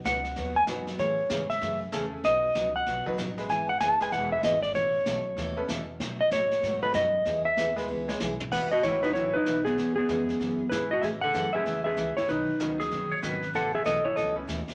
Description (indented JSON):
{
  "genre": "country, western swing",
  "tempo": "191 BPM",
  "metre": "4/4",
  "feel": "swing 63% on 8ths",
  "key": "E major",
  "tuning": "A4 = 440 Hz",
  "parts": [
    { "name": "upright bass", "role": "bass", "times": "0.0-14.7 s", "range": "E1 to B2", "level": "-43 LUFS", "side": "equal", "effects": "none" },
    { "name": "clean lap steel guitar", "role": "melody", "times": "0.1-14.4 s", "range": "B3 to A5", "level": "-28 LUFS", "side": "equal", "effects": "none" },
    { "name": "picked steel-string acoustic guitar", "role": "accompaniment", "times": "0.1-14.6 s", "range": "B2 to B4", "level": "-38 LUFS", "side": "equal", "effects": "none" },
    { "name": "vintage brush drum kit", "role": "drums", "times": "0.1-14.7 s", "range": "brushed snare drum, crash cymbal, hi-hat, kick drum, snare drum, toms", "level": "-41 LUFS", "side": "equal", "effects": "none" },
    { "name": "bright upright piano", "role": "accompaniment", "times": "0.7-14.5 s", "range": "D#3 to C#5", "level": "-39 LUFS", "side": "equal", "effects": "none" },
    { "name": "clean lap steel guitar", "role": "second line", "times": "12.8-13.5 s", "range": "G#4 to C#5", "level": "-34 LUFS", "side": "equal", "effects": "none" }
  ],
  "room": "wet club reverb, RT60 0.9 s",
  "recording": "none",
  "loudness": "-28 LUFS",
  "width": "mono",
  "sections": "0.0-8.5 A section; 8.5-14.7 B section",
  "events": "electric slide guitar solo 0.0-8.5; drum fill 7.9-8.5",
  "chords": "0.0 B; 1.0 Amaj7; 2.2 B; 3.5 E; 4.8 Aadd9; 6.0 B7; 7.3 E; 8.5 Esus2; 9.8 C#m7/E; 11.0 Amaj7; 12.3 Badd9; 13.5 Aadd9",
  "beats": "0.05 0.36 0.67 | 0.99 1.30 1.61 1.93 | 2.24 2.55 2.87 3.18 | 3.50 3.81 4.12 4.44 | 4.75 5.06 5.38 5.69 | 6.00 6.32 6.63 6.95 | 7.26 7.57 7.89 8.20 | 8.52 8.83 9.14 9.46 | 9.77 10.09 10.40 10.71 | 11.03 11.34 11.66 11.97 | 12.28 12.60 12.91 13.22 | 13.54 13.85 14.17 14.48"
}